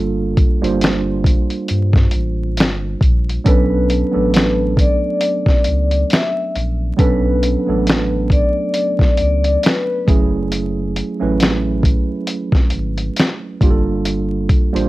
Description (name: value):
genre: lo-fi hip hop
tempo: 68 BPM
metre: 4/4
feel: swing 56% on 16ths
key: B minor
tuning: A4 = 440 Hz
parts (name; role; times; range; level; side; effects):
- mellow tine electric piano; accompaniment; 0.0-14.9 s; F#3 to C5; -20 LUFS; right 4 dB; medium stereo tremolo, cassette tape, low-pass filter
- warm sub bass; bass; 0.0-14.9 s; F#1 to G2; -20 LUFS; equal; none
- dusty soul sampler-style drum kit; drums; 0.4-14.9 s; finger snaps, hi-hat, kick drum, snare drum; -15 LUFS; equal; vintage 12-bit sampler grit, cassette tape
- vibraphone with medium hard mallets; melody; 3.5-10.0 s; B4 to E5; -20 LUFS; left 3 dB; low-pass filter, cassette tape, plate reverb
room: moderate studio reverb, RT60 0.7 s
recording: home recording on cassette, vinyl crackle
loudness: -14 LUFS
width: side -18 dB against mid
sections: 0.0-14.9 A section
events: none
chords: 0.0 Gm9; 3.5 Bm9; 10.1 F#m9; 13.6 Gm9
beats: 0.81 1.70 2.58 | 3.46 4.34 5.22 6.11 | 6.99 7.87 8.75 9.64 | 10.52 11.40 12.28 13.17 | 14.05